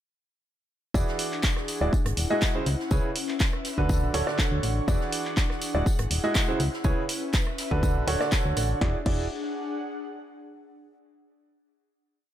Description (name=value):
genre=piano house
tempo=122 BPM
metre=4/4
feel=straight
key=E mixolydian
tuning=A4 = 440 Hz
part: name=clear upright piano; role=riff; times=0.9-9.2 s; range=C#3 to D#5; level=-29 LUFS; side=right 2 dB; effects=sidechain pumping, ping-pong delay
part: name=solid FM bass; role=bass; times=0.9-9.3 s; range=D1 to D2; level=-28 LUFS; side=equal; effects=tube saturation, sidechain pumping
part: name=big rock drum kit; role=drums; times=0.9-8.7 s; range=hi-hat, snare drum, tambourine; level=-40 LUFS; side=left 1 dB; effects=high-pass filter on hats, high-pass filter on snare, high-pass filter on perc, high-pass filter on room
part: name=electronic kick drum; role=drums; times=0.9-9.2 s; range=none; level=-25 LUFS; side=equal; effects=none
part: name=airy breathy pad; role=texture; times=0.9-10.7 s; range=C#4 to C#6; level=-35 LUFS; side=left 2 dB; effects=chorus, sidechain pumping
part: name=punchy analog drum machine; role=drums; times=1.2-9.2 s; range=crash cymbal, handclaps, hi-hat, rim click, snare drum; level=-31 LUFS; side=equal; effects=none
room=little or no reverb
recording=none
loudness=-24 LUFS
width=side -11 dB against mid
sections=0.9-8.8 groove; 8.8-10.8 final chord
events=none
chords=0.9 E9; 1.9 G#7b13; 2.7 C#m7; 3.6 Dmaj7; 4.9 E9; 5.9 G#7b13; 6.6 C#m7; 7.6 Dmaj7; 8.8 E9